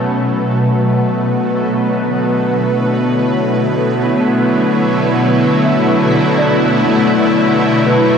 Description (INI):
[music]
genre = ambient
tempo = free time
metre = none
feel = none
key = B minor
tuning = A4 = 440 Hz
[part]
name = shimmering ambient pad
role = sustained chords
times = 0.0-8.2 s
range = B2 to E4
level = -13 LUFS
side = left 1 dB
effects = chorus, built-in reverb
[part]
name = felt-muted upright piano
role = arpeggios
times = 0.0-8.2 s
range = A3 to E5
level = -21 LUFS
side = right 2 dB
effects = diffuse ambient delay
[part]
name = bowed-like drone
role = drone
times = 0.0-8.2 s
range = B3 to B4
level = -19 LUFS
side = right 1 dB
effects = built-in reverb, phaser
[sound]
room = wet huge ambient reverb, RT60 8.3 s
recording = dark, warm production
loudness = -12 LUFS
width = side -7 dB against mid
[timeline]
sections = 0.1-8.2 A section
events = fade-in on felt piano 0.1-8.2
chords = 0.1 Bm11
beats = free time